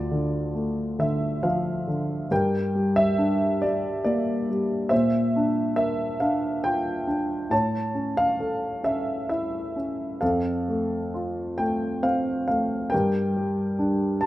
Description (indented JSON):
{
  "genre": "classical, lyrical solo piano",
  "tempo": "68 BPM",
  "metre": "3/4",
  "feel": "rubato",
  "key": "unclear",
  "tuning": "A4 = 441 Hz",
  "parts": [
    { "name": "dark grand piano", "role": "solo", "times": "0.0-14.3 s", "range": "D2 to A5", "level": "-23 LUFS", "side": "equal", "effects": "none" }
  ],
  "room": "light reverb",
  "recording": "close, detailed microphones",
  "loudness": "-23 LUFS",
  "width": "side -15 dB against mid",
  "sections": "0.0-14.3 A section",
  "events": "none",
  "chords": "0.0 Dm; 2.3 Gm; 4.9 Bbadd9; 7.5 A; 10.2 F; 12.9 Gm"
}